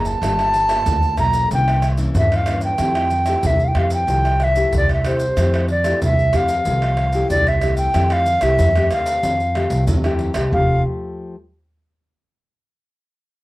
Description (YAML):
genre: samba and choro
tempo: 93 BPM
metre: 4/4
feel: straight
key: F major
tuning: A4 = 440 Hz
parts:
  - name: bright baroque flute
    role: melody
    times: 0.0-10.8 s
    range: C5 to Bb5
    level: -19 LUFS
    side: equal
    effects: cassette tape
  - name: nylon-string guitar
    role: accompaniment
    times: 0.0-11.3 s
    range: G2 to A4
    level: -25 LUFS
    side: left 2 dB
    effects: cassette tape
  - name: upright bass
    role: bass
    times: 0.0-10.8 s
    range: F1 to G2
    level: -20 LUFS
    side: equal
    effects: none
  - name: maracas, pandeiro, surdo and tamborim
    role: percussion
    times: 0.1-10.7 s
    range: none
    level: -24 LUFS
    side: right 1 dB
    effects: none
room: moderate studio reverb, RT60 0.5 s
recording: home recording on cassette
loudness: -15 LUFS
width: side -18 dB against mid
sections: 0.0-7.9 A section; 7.9-10.5 B section; 10.5-13.1 C section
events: none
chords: 0.2 Gm9; 1.5 C7b9; 2.8 Fmaj9; 10.5 Fadd9